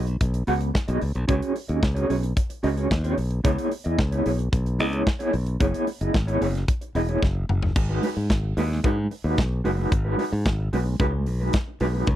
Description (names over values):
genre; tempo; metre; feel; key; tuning
disco; 111 BPM; 4/4; straight; unclear; A4 = 438 Hz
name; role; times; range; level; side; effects
mellow electric guitar; accompaniment; 0.0-12.1 s; G#3 to F#5; -26 LUFS; right 1 dB; tremolo
modern bright fingered electric bass; bass; 0.0-12.2 s; E1 to G#2; -24 LUFS; equal; none
modern studio drum kit; drums; 0.1-12.2 s; crash cymbal, hi-hat, kick drum, snare drum, toms; -24 LUFS; equal; none
room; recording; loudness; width
little or no reverb; dry, close 1970s-style studio recording; -22 LUFS; side -12 dB against mid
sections
0.0-7.8 A section; 7.8-12.2 B section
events
drum fill 7.2-7.8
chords
0.0 B6; 3.4 C#m7; 5.6 F#9sus4; 7.8 G#m7